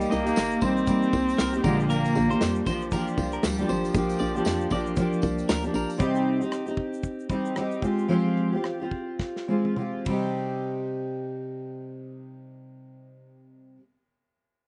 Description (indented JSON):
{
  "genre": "acoustic pop",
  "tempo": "99-117 BPM",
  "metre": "4/4",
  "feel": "swing 60% on 16ths",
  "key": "C minor",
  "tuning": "A4 = 440 Hz",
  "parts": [
    { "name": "dark cello", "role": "melody", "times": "0.0-5.5 s", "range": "F3 to C4", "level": "-31 LUFS", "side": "equal", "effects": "slapback echo" },
    { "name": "fingerpicked steel-string acoustic guitar", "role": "accompaniment", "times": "0.0-13.8 s", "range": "Bb2 to G4", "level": "-29 LUFS", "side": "equal", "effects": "double-tracked" },
    { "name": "hollow knocking FM bass", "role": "bass", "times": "0.0-5.9 s", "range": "G1 to F2", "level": "-34 LUFS", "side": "equal", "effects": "none" },
    { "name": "natural country drum kit", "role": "drums", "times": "0.0-10.2 s", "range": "kick drum, ride cymbal, rim click, shaker, snare drum, toms", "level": "-32 LUFS", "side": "equal", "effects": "none" },
    { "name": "tambourine", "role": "percussion", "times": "0.0-6.0 s", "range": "none", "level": "-46 LUFS", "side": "equal", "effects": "none" },
    { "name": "electric guitar at the edge of break-up", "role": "arpeggios", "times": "0.1-5.9 s", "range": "Bb4 to Eb5", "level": "-37 LUFS", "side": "equal", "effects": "phaser" }
  ],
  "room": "little or no reverb",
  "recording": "recorded outdoors, with no room sound, nothing above 10.3 kHz",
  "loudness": "-26 LUFS",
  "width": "mono",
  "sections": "0.0-6.0 A section; 6.0-10.4 B section; 10.4-14.7 C section",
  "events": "slowing down 6.0-10.4; drum fill 9.2-10.4",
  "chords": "0.0 Cm7; 1.6 Bb6; 6.0 Cm; 7.8 Fmadd9; 10.1 Cm",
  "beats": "0.37 0.88 1.39 | 1.90 2.41 2.92 3.44 | 3.95 4.46 4.97 5.48 | 6.00 6.51 7.03 7.55 | 8.09 8.63 9.20 9.77 | 10.37 10.97 11.58 12.19 | 12.79 13.40"
}